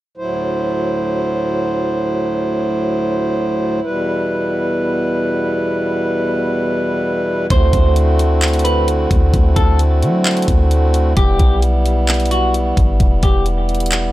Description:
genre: hip hop, atmospheric cloud-rap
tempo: 131 BPM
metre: 4/4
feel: half-time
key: unclear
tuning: A4 = 440 Hz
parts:
  - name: pedal harmonium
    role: sustained chords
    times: 0.2-14.1 s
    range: D2 to C5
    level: -17 LUFS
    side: equal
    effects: sidechain pumping
  - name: electric guitar at the edge of break-up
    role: melody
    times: 7.5-13.4 s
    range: F#4 to C5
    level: -22 LUFS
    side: right 1 dB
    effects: analog delay
  - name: soft 808-style bass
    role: bass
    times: 7.5-14.1 s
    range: E1 to F#3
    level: -15 LUFS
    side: equal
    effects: none
  - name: trap drum kit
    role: drums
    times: 7.5-14.0 s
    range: handclaps, hi-hat, kick drum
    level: -16 LUFS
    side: equal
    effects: none
room: little or no reverb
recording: dry, gritty hardware recording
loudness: -14 LUFS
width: side -16 dB against mid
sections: 0.2-7.5 A section; 7.5-14.1 B section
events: none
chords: 0.2 D7; 3.8 Em; 7.5 D7; 11.2 Em

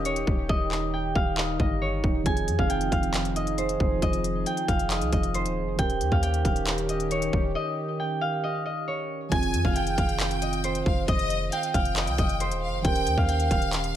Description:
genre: hip hop, trap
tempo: 136 BPM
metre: 4/4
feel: half-time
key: F minor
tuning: A4 = 442 Hz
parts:
  - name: concert harp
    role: melody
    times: 0.0-14.0 s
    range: C5 to Ab5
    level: -29 LUFS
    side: right 1 dB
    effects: low-pass filter, digital delay
  - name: warm analog pad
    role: sustained chords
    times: 0.0-9.3 s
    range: Eb3 to Ab4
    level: -32 LUFS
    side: left 1 dB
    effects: chorus
  - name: clean 808-style bass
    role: bass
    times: 0.0-14.0 s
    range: Eb1 to F2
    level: -30 LUFS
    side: equal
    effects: none
  - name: trap drum kit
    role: drums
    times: 0.1-13.9 s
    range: handclaps, hi-hat, kick drum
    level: -27 LUFS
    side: equal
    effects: none
  - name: mellow tine electric piano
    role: accompaniment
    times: 2.2-14.0 s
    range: Eb3 to Bb4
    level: -32 LUFS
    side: right 4 dB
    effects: wide subtle chorus, low-pass filter
  - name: rich studio violin section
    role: second line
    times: 9.3-14.0 s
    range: Eb5 to Ab5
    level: -32 LUFS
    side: left 3 dB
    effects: digital delay
room: light reverb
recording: none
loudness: -23 LUFS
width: side -11 dB against mid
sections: 0.0-9.3 A section; 9.3-14.0 B section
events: break 0.0-2.3, 7.6-9.3; hi-hats muted 0.5-2.3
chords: 0.0 Eb7; 2.3 Fm7; 5.8 Eb7; 9.3 Fm7; 12.8 Eb7

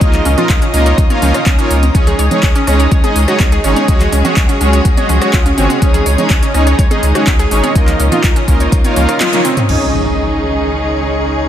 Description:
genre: progressive house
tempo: 124 BPM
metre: 4/4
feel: straight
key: Db major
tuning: A4 = 441 Hz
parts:
  - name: clear symphonic string section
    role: sustained chords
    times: 0.0-11.5 s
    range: Bb2 to Ab4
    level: -23 LUFS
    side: left 1 dB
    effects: sidechain pumping
  - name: soft supersaw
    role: stabs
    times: 0.0-11.5 s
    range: Ab3 to F5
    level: -16 LUFS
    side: right 1 dB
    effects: vintage 12-bit sampler grit, sidechain pumping, low-pass filter, dub echo
  - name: round analog bass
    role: bass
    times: 0.0-11.5 s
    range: Ab1 to Db2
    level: -15 LUFS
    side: equal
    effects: sidechain pumping
  - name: deep house drum kit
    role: drums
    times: 0.0-9.8 s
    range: crash cymbal, handclaps, hi-hat, rim click, toms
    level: -20 LUFS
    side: equal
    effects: none
  - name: electronic kick drum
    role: drums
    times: 0.0-8.8 s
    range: none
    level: -12 LUFS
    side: equal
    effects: none
  - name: drifting glass-harmonics texture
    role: texture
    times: 0.0-11.5 s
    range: Db4 to Db7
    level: -25 LUFS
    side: equal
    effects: chorus, built-in reverb, sidechain pumping
  - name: congas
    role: percussion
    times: 0.1-9.7 s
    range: none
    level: -23 LUFS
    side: right 5 dB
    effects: sidechain pumping on perc
  - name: wide unison pluck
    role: arpeggios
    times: 0.3-9.5 s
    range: C4 to Db5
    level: -19 LUFS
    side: equal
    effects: cassette tape, sidechain pumping, dub echo
  - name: impact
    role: sound effects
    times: 9.7-11.5 s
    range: none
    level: -22 LUFS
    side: equal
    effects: none
room: light reverb, digital ambience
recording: none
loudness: -10 LUFS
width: side -10 dB against mid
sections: 0.0-9.7 A section; 9.7-11.5 B section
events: drum fill 9.2-9.7; band accent 9.2; impact 9.7-11.5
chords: 0.0 Ebsus2/Db; 1.9 Dbsus2; 3.9 Gbsus2/Db; 5.8 Dbsus2; 7.8 Ebsus2/Db; 9.7 Dbsus2

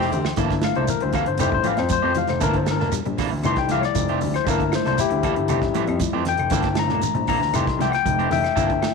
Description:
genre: afrobeat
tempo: 117 BPM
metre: 4/4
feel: straight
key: G dorian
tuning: A4 = 440 Hz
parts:
  - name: barky tine electric piano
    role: accompaniment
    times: 0.0-8.9 s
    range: G3 to C6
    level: -22 LUFS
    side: left 12 dB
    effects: overdrive
  - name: semi-hollow electric guitar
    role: arpeggios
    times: 0.0-8.9 s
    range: C3 to G3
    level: -32 LUFS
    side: left 11 dB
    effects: ensemble chorus
  - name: electric guitar at the edge of break-up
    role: stabs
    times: 0.0-8.9 s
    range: E3 to A4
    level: -29 LUFS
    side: right 13 dB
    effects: wide subtle chorus
  - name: dark concert grand piano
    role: bass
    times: 0.0-8.8 s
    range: E1 to F2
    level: -25 LUFS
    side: right 1 dB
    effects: none
  - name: warm soul drum kit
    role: drums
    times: 0.0-8.9 s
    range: hi-hat, kick drum, snare drum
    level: -30 LUFS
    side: right 4 dB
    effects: none
  - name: congas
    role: percussion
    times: 0.1-8.9 s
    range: none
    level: -31 LUFS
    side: right 14 dB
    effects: none
  - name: shekere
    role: percussion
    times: 0.1-8.9 s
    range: none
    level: -32 LUFS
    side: right 8 dB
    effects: none
  - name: claves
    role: percussion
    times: 0.3-8.9 s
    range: none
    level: -40 LUFS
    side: left 11 dB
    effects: none
room: light reverb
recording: 1960s-style stereo with parts hard left and right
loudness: -19 LUFS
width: side -4 dB against mid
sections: 0.4-8.9 A section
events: tine electric piano solo 0.4-8.9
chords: 0.4 Gm69; 1.4 Fmaj9; 2.4 Gm69; 3.4 Fmaj9; 4.5 Gm69; 5.5 Fmaj9; 6.5 Gm69; 7.5 Fmaj9

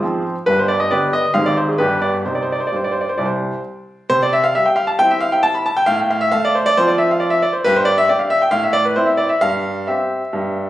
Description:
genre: classical-period piano sonatina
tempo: 128-139 BPM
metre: 4/4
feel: rubato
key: C minor, C major from 4.1 s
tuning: A4 = 437 Hz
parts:
  - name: clear baby grand piano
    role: solo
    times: 0.0-10.7 s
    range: G1 to B5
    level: -15 LUFS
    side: equal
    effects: none
room: light reverb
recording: recorded on a phone in the room, club reverb, compression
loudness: -14 LUFS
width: side -14 dB against mid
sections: 0.0-4.1 A section; 4.1-10.7 A section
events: none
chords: 0.5 G; 1.3 Abmaj7; 1.8 G; 2.2 Cm; 4.1 C; 5.9 F/A; 7.6 G5; 8.5 Am; 9.4 C/G

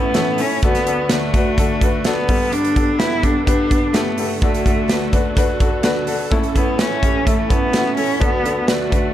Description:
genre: piano-driven pop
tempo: 127 BPM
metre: 4/4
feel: straight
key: D major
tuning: A4 = 441 Hz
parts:
  - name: rich cello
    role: melody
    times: 0.0-9.1 s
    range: A3 to E4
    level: -20 LUFS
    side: left 1 dB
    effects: none
  - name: bright upright piano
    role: accompaniment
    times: 0.0-9.1 s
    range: G1 to B4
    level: -23 LUFS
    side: left 4 dB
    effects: none
  - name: warm studio string section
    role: sustained chords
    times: 0.0-9.1 s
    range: D2 to A4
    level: -29 LUFS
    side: right 1 dB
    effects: none
  - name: picked steel-string acoustic guitar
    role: riff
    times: 0.0-9.1 s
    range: A2 to A4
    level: -26 LUFS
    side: right 8 dB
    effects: none
  - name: modern studio drum kit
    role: drums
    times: 0.1-9.0 s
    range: hi-hat, kick drum, snare drum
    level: -19 LUFS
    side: equal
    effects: none
room: light reverb, small room ambience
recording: dark, warm production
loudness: -15 LUFS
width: side -12 dB against mid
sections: 0.0-9.1 A section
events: none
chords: 0.0 A; 0.6 D; 2.3 Gadd9; 4.4 D; 6.3 A; 8.2 D

